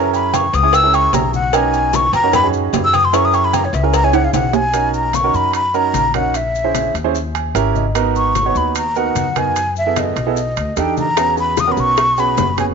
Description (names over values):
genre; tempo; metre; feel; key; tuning
Afro-Cuban jazz; 149 BPM; 4/4; straight; B major; A4 = 440 Hz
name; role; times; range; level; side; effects
breathy mellow silver concert flute; melody; 0.0-12.7 s; C#5 to E6; -16 LUFS; left 2 dB; none
warm baby grand piano; accompaniment; 0.0-12.7 s; B3 to G#5; -20 LUFS; right 11 dB; none
upright bass; bass; 0.0-12.7 s; F#1 to F#2; -22 LUFS; left 2 dB; none
agogo bells and timbales; percussion; 0.1-12.7 s; none; -22 LUFS; right 14 dB; none
congas; percussion; 0.1-12.7 s; none; -27 LUFS; left 15 dB; none
maracas; percussion; 0.1-12.7 s; none; -32 LUFS; left 18 dB; none
cowbell and bongos; percussion; 0.3-4.5, 11.2-12.7 s; none; -24 LUFS; left 18 dB; none
room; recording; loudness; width
light reverb, studio ambience; 1960s-style stereo with parts hard left and right, nothing above 7.8 kHz; -13 LUFS; side -5 dB against mid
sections
0.0-4.7 A section; 4.7-12.7 B section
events
flute solo 0.0-4.7; drum fill 4.1-4.7; grand piano fill 7.1-8.0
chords
0.0 F#7; 1.5 Bmaj7; 3.1 F#7; 4.7 Bmaj9; 6.3 A#m7b5; 7.1 D#7b9; 8.0 G#m9; 9.6 F#m11; 10.4 B7alt; 11.2 F#7